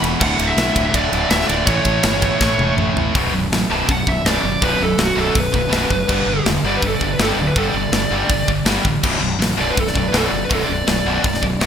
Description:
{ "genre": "heavy metal", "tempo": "163 BPM", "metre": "4/4", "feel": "straight", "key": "B minor", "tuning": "A4 = 439 Hz", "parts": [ { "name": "high-gain distorted guitar", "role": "riff", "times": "0.0-11.7 s", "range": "B1 to A3", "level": "-20 LUFS", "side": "equal", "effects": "distortion" }, { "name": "fuzz fingered electric bass", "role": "bass", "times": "0.0-11.7 s", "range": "B0 to B1", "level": "-24 LUFS", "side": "equal", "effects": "overdrive" }, { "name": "tight metal drum kit", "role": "drums", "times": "0.0-11.7 s", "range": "crash cymbal, hi-hat, kick drum, ride cymbal, snare drum, toms", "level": "-20 LUFS", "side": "equal", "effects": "gated reverb" }, { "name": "high-gain lead guitar", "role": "melody", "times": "0.2-11.7 s", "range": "F#4 to A5", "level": "-21 LUFS", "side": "right 2 dB", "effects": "distortion, digital delay" } ], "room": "moderate lush hall reverb, RT60 1.8 s, small room ambience", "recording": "bright 1980s-style digital production", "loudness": "-15 LUFS", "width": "side -8 dB against mid", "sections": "0.0-3.1 A section; 3.1-11.7 B section", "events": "drum fill 2.4-3.1; lead electric guitar solo 3.1-11.7", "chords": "0.2 D5; 1.7 A; 3.1 B5; 6.1 G; 9.0 Bm", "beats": "| 0.20 0.57 0.94 1.31 | 1.68 2.04 2.41 2.78 | 3.15 3.52 3.88 4.25 | 4.62 4.99 5.36 5.73 | 6.09 6.46 6.83 7.20 | 7.57 7.94 8.30 8.67 | 9.04 9.41 9.78 10.14 | 10.51 10.88 11.25 11.61" }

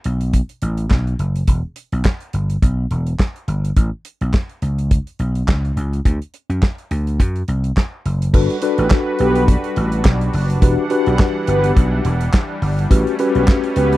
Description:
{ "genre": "early-eighties boogie funk", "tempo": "105 BPM", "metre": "4/4", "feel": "swing 56% on 16ths", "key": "G major", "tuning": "A4 = 440 Hz", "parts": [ { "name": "damped 70s drum kit", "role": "drums", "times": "0.0-14.0 s", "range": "crash cymbal, handclaps, hi-hat, kick drum, snare drum", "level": "-15 LUFS", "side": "equal", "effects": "none" }, { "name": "vintage slap bass", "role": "bass", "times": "0.1-14.0 s", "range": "E1 to F#2", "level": "-18 LUFS", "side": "equal", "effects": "none" }, { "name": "mellow tine electric piano", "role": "accompaniment", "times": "8.3-14.0 s", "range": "C#4 to B4", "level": "-19 LUFS", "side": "left 3 dB", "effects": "medium stereo tremolo" }, { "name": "warm analog pad", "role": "sustained chords", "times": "8.3-14.0 s", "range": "E3 to F#5", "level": "-25 LUFS", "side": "right 1 dB", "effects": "chorus, tremolo" }, { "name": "mellow synth brass", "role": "second line", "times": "8.8-14.0 s", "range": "B3 to B4", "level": "-19 LUFS", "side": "right 2 dB", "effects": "chorus" } ], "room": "little or no reverb", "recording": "dry, close 1970s-style studio recording", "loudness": "-15 LUFS", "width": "side -16 dB against mid", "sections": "0.0-8.3 A section; 8.3-14.0 B section", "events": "none", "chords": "0.0 Gmaj7 (rootless); 1.5 Em; 3.8 Aadd9 (rootless); 6.0 D7; 8.3 Gmaj7; 10.6 Em9; 12.9 A13", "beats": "0.34 0.91 | 1.48 2.05 2.62 3.19 | 3.77 4.34 4.91 5.48 | 6.05 6.62 7.19 7.76 | 8.34 8.91 9.48 10.05 | 10.62 11.19 11.77 12.34 | 12.91 13.48" }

